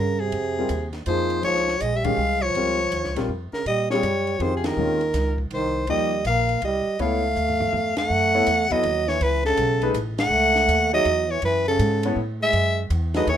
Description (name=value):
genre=modal jazz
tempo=162 BPM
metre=3/4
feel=swing 65% on 8ths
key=Bb dorian, F# dorian from 8.1 s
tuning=A4 = 440 Hz
part: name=growling soprano saxophone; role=melody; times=0.0-13.4 s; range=Ab4 to Gb5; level=-22 LUFS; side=left 2 dB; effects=none
part: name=breathy trombone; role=second line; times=0.0-13.4 s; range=C3 to Bb3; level=-26 LUFS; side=right 5 dB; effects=none
part: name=upright bass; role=bass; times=0.0-13.4 s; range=A1 to Bb2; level=-27 LUFS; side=equal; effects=none
part: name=compact cocktail drum kit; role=drums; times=0.3-13.4 s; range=hi-hat, kick drum, ride cymbal, snare drum, toms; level=-36 LUFS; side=right 1 dB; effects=none
part: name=warm concert grand piano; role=accompaniment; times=0.6-13.3 s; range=Eb3 to E5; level=-26 LUFS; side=left 4 dB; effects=none
room=light reverb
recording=minimal, uncompressed stereo recording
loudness=-20 LUFS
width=side -9 dB against mid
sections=0.0-8.1 A section; 8.1-13.4 B section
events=band accent 2.0, 4.6, 7.9, 10.1; drum fill 7.4-8.1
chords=0.0 Bbm9; 3.7 Cm7; 7.0 Db7alt; 8.1 F#m9